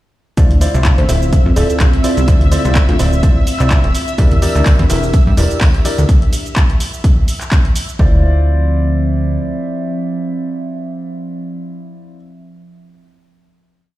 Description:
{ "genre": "piano house", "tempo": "126 BPM", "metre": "4/4", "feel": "swing 56% on 16ths", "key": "D minor", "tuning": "A4 = 441 Hz", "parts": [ { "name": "analog string pad", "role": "sustained chords", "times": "0.4-8.0 s", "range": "E5 to E6", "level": "-27 LUFS", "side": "left 2 dB", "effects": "ensemble chorus, sidechain pumping" }, { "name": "warm grand piano", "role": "riff", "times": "0.4-12.2 s", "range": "E4 to E5", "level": "-23 LUFS", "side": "left 1 dB", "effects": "sidechain pumping, digital delay" }, { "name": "plucky analog bass", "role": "bass", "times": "0.4-9.4 s", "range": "D1 to G2", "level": "-14 LUFS", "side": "equal", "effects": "tube saturation, sidechain pumping" }, { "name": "electronic kick drum", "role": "drums", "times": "0.4-8.1 s", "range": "none", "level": "-12 LUFS", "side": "equal", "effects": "none" }, { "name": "punchy analog drum machine", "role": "drums", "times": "0.4-8.0 s", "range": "cabasa, handclaps, hi-hat", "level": "-23 LUFS", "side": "equal", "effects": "none" }, { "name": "warbly tape-like pad", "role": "texture", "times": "1.1-12.3 s", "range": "F3 to E5", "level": "-23 LUFS", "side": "right 2 dB", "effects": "chorus, built-in reverb, sidechain pumping" }, { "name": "bell-like FM electric piano", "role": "melody", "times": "1.0-3.1 s", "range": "F4 to C5", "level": "-24 LUFS", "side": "equal", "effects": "chorus, digital delay" }, { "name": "tambourine and congas", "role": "percussion", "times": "4.2-6.1 s", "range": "none", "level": "-26 LUFS", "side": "right 2 dB", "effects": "none" } ], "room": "little or no reverb", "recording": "played on a big sound system in a bare room, stone room reverb", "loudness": "-11 LUFS", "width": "side -16 dB against mid", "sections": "0.4-8.0 drop; 8.0-11.8 final chord", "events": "drop 0.4-8.0", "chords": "0.4 Dm9; 3.9 Em7b5; 6.1 N.C.; 8.0 Dm9", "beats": "| 0.37 0.85 1.33 1.80 | 2.28 2.75 3.23 3.71 | 4.18 4.66 5.14 5.61 | 6.09 6.56 7.04 7.52 | 7.99 8.47 8.95 9.42 | 9.90 10.37 10.85 11.33" }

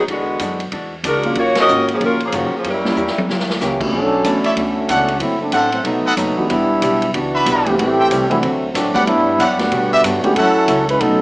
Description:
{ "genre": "jazz, big band swing", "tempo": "187 BPM", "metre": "4/4", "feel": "swing 62% on 8ths", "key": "B minor from 3.9 s", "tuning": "A4 = 441 Hz", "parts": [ { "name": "clear saxophone section", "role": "melody", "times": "0.0-3.3 s", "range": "Db3 to Eb5", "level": "-17 LUFS", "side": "equal", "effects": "plate reverb" }, { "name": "upright bass", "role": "bass", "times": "0.0-11.2 s", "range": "E1 to B2", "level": "-28 LUFS", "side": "equal", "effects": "none" }, { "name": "archtop guitar, miked and amplified", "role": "accompaniment", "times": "0.1-11.2 s", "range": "F#2 to G4", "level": "-24 LUFS", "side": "left 1 dB", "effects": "none" }, { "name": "swinging big-band drum kit", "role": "drums", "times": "0.1-11.1 s", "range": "crash cymbal, hi-hat, kick drum, ride cymbal, snare drum, toms", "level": "-25 LUFS", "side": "equal", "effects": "none" }, { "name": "warm concert grand piano", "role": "accompaniment", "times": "1.2-11.2 s", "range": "Cb3 to G4", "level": "-21 LUFS", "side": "right 1 dB", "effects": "none" }, { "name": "clear trombone section", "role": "second line", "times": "3.6-11.2 s", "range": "D3 to B4", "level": "-17 LUFS", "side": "equal", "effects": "none" }, { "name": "clear trumpet section", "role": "stabs", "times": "4.4-10.8 s", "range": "D4 to B5", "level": "-17 LUFS", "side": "equal", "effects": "none" } ], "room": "moderate large studio reverb, RT60 1.0 s", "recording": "small speaker sound", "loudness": "-14 LUFS", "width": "side -23 dB against mid", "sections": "0.0-3.9 A section; 3.9-11.2 B section", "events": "band accent 1.5; drum fill 3.0-3.6; trombone section solo 3.9-11.2", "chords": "0.1 E9; 1.4 Ebm9; 2.6 Gb7b9; 3.9 Bm11; 5.2 F#m7b5; 5.9 B7; 6.5 Em7; 7.8 Am7; 8.4 D7; 9.1 Gmaj7; 10.4 F#m7", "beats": "| 0.08 0.40 0.72 1.04 | 1.36 1.68 2.00 2.32 | 2.64 2.96 3.28 3.60 | 3.93 4.25 4.57 4.89 | 5.21 5.53 5.85 6.18 | 6.50 6.82 7.14 7.46 | 7.79 8.11 8.43 8.75 | 9.07 9.40 9.72 10.04 | 10.36 10.69 11.01" }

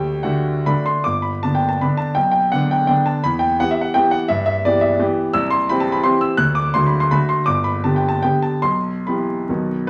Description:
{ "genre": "classical, romantic triple-time dance for piano with dotted rhythms", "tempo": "131-183 BPM", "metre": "3/4", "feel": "rubato", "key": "G major, E minor from 5.3 s", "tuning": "A4 = 441 Hz", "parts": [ { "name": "warm grand piano", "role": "solo", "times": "0.0-9.9 s", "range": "G1 to F#6", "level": "-18 LUFS", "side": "equal", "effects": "none" } ], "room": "moderate large studio reverb, RT60 1.0 s", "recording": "vinyl crackle", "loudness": "-18 LUFS", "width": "mono", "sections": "0.0-1.1 A section; 1.1-9.9 A section", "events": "none", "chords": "0.0 D; 1.1 G; 2.2 Gmaj9/B; 3.2 Em; 4.3 Em/G; 5.3 C; 6.4 D; 7.5 G; 8.6 Em/B; 9.5 B", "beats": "0.24 0.67 | 1.07 1.45 1.82 | 2.17 2.54 2.90 | 3.25 3.60 3.96 | 4.30 4.66 5.01 | 5.34 5.69 6.04 | 6.38 6.74 7.11 | 7.46 7.83 8.23 | 8.64 9.08 9.50 | 9.89" }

